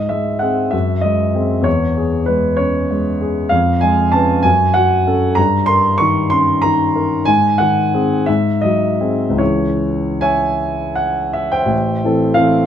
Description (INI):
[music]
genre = classical, romantic character piece for solo piano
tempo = 48-65 BPM (dotted quarters)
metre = 6/8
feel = rubato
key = C# minor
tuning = A4 = 440 Hz
[part]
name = warm concert grand piano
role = solo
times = 0.0-12.7 s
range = A1 to C#6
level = -13 LUFS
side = equal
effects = none
[sound]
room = little or no reverb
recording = close, detailed microphones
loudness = -13 LUFS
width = side -9 dB against mid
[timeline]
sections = 0.0-11.7 A section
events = none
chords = 0.0 G#; 0.7 G#7/F#; 1.7 C#m/E; 3.5 C#7/E#; 4.4 F#m; 5.4 D#7/G; 7.3 G#; 8.3 G#7; 9.4 C#m; 11.7 Am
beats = 0.73 | 1.65 2.58 | 3.52 4.45 | 5.37 6.31 | 7.27 8.27 | 9.40 10.60 | 11.72